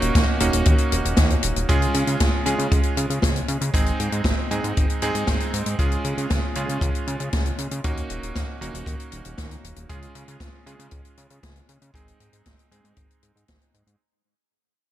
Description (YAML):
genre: italo disco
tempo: 117 BPM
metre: 4/4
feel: straight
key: Db major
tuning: A4 = 440 Hz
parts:
  - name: bright electric grand piano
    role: stabs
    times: 0.0-14.0 s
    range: Ab3 to Ab4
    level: -26 LUFS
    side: right 2 dB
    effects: low-pass filter, tape echo
  - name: fat analog bass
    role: bass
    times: 0.0-14.0 s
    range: Eb1 to Db3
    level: -27 LUFS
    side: equal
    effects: none
  - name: open jazz drum kit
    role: drums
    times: 0.0-14.0 s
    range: hi-hat, snare drum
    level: -27 LUFS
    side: left 1 dB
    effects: gated reverb
  - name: kick drum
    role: drums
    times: 0.2-13.6 s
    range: none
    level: -23 LUFS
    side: equal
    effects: none
room: small room ambience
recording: none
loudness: -20 LUFS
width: side -12 dB against mid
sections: 0.0-14.0 A section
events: fade-out 0.0-14.0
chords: 0.0 Ebm7; 1.7 Db; 3.7 Ab; 5.8 Db; 7.8 Ebm7; 9.9 Db; 11.9 Ab